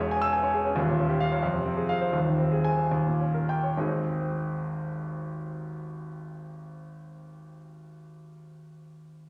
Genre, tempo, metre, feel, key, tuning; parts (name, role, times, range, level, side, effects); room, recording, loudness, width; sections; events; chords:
classical, virtuoso piano study; 67-93 BPM (dotted quarters); 6/8; rubato; Ab major; A4 = 441 Hz
warm concert grand piano; solo; 0.0-9.3 s; Eb1 to Fb6; -29 LUFS; equal
wet concert hall reverb, RT60 2.3 s; -27 LUFS; mono
0.0-3.8 A section; 3.8-7.3 B section
slowing down 0.1-3.8
0.0 Dbm/Fb; 0.8 Eb9; 1.4 Fm; 2.1 Ab/Eb; 2.9 Eb7; 3.8 Ab